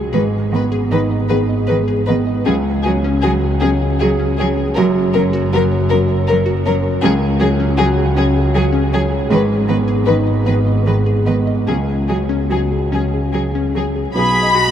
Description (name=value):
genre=neoclassical piano and strings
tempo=72-81 BPM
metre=3/4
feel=rubato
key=unclear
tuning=A4 = 440 Hz
part: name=felt-muted upright piano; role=accompaniment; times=0.0-14.7 s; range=B1 to D#5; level=-19 LUFS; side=right 2 dB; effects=none
part: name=glassy wavetable pluck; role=arpeggios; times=0.0-14.7 s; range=C#4 to F#5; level=-23 LUFS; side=left 3 dB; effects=chorus, tape echo
part: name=dark double bass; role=bass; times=0.0-14.7 s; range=F#1 to C#2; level=-19 LUFS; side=equal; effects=none
part: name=warm studio violin section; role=melody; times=0.1-14.7 s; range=G#4 to B5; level=-21 LUFS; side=left 4 dB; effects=none
part: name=warm cello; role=second line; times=0.1-14.7 s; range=D#3 to G#4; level=-23 LUFS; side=right 3 dB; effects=none
room=wet huge ambient reverb, RT60 7.6 s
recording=in a vast, echoing space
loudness=-14 LUFS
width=side -9 dB against mid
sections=0.0-14.1 A section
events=none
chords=0.1 G#m; 2.5 C#sus4; 4.8 F#; 7.0 C#sus4; 9.3 G#m; 11.7 C#sus4; 14.1 B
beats=| 0.14 0.92 1.69 | 2.47 3.24 4.01 | 4.76 5.52 6.27 | 7.02 7.78 8.54 | 9.30 10.06 10.86 | 11.67 12.51 13.33 | 14.14